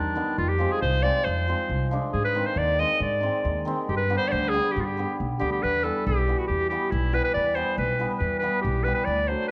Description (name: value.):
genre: klezmer.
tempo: 138 BPM.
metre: 2/4.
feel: straight.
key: G phrygian dominant, E minor from 5.6 s.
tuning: A4 = 439 Hz.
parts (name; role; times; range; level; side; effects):
bright clarinet; melody; 0.0-9.5 s; D4 to Eb5; -28 LUFS; equal; none.
hammered dulcimer; accompaniment; 0.0-9.5 s; D3 to D4; -33 LUFS; equal; none.
upright bass; bass; 0.0-9.3 s; B1 to Ab2; -30 LUFS; equal; none.
room: moderate recital hall reverb, RT60 1.7 s.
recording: worn, warbling old tape, cassette tape, warbly pitch drift.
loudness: -25 LUFS.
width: mono.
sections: 0.0-5.6 A section; 5.6-9.5 B section.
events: none.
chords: 0.4 Fm; 2.1 Ab; 3.9 G; 5.6 Em.